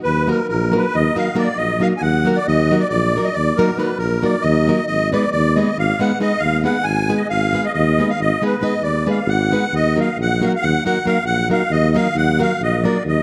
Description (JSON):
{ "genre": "balkan folk, Balkan wedding band", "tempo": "272 BPM (eighths)", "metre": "11/8", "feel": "straight", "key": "Eb harmonic minor", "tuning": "A4 = 440 Hz", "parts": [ { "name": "musette accordion", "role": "melody", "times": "0.0-13.2 s", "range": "Bb4 to Ab5", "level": "-22 LUFS", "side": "equal", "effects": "none" }, { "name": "mellow tuba", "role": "bass", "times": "0.0-13.2 s", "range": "Ab1 to Eb2", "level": "-22 LUFS", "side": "equal", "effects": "none" }, { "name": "nylon-string guitar", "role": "accompaniment", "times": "0.3-13.0 s", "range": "Gb3 to Cb5", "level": "-23 LUFS", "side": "equal", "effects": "none" } ], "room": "moderate concert hall reverb, RT60 2.0 s", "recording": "none", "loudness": "-18 LUFS", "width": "mono", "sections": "0.0-13.2 A section", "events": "none", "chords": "0.0 Ebm; 4.9 Abm; 9.7 Ebm", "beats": "| 0.03 0.25 0.47 0.69 0.91 1.14 1.35 1.58 1.80 2.02 2.24 | 2.46 2.68 2.90 3.12 3.34 3.56 3.77 4.00 4.21 4.43 4.65 | 4.87 5.09 5.31 5.53 5.75 5.97 6.19 6.41 6.63 6.85 7.07 | 7.29 7.51 7.74 7.96 8.18 8.40 8.62 8.84 9.06 9.28 9.50 | 9.72 9.94 10.16 10.38 10.61 10.83 11.05 11.27 11.49 11.71 11.93 | 12.15 12.37 12.59 12.81 13.04" }